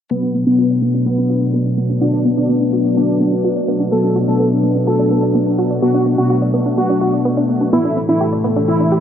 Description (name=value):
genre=melodic techno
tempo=126 BPM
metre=4/4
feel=straight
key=B minor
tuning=A4 = 441 Hz
part: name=wide unison lead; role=melody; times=0.1-9.0 s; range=B3 to A4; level=-20 LUFS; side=equal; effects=analog delay
part: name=bright studio violin section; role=second line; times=0.1-9.0 s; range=B3 to A4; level=-33 LUFS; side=equal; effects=analog delay
part: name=evolving wavetable pad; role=sustained chords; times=0.7-9.0 s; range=A2 to E4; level=-22 LUFS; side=left 3 dB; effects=chorus, built-in reverb
part: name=wide unison pluck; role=arpeggios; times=0.1-9.0 s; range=B3 to D5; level=-20 LUFS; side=equal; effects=analog delay
part: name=analog synth brass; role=stabs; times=0.1-9.0 s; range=A2 to B3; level=-18 LUFS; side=left 1 dB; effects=chorus, analog delay
part: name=warbly tape-like pad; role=texture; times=1.0-9.0 s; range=B3 to C6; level=-25 LUFS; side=right 2 dB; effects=chorus, built-in reverb
part: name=tube shaker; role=percussion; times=7.7-9.0 s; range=none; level=-60 LUFS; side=right 3 dB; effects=none
room=moderate lush hall reverb, RT60 2.4 s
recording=dry, gritty hardware recording, low-pass filter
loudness=-13 LUFS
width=side -9 dB against mid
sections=0.1-9.0 A section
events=filter sweep on synth pluck 0.1-9.0; filter sweep 0.1-9.0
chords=0.1 Bm7; 7.7 Am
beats=| 0.11 0.59 1.06 1.54 | 2.01 2.49 2.97 3.44 | 3.92 4.39 4.87 5.35 | 5.82 6.30 6.78 7.25 | 7.73 8.21 8.68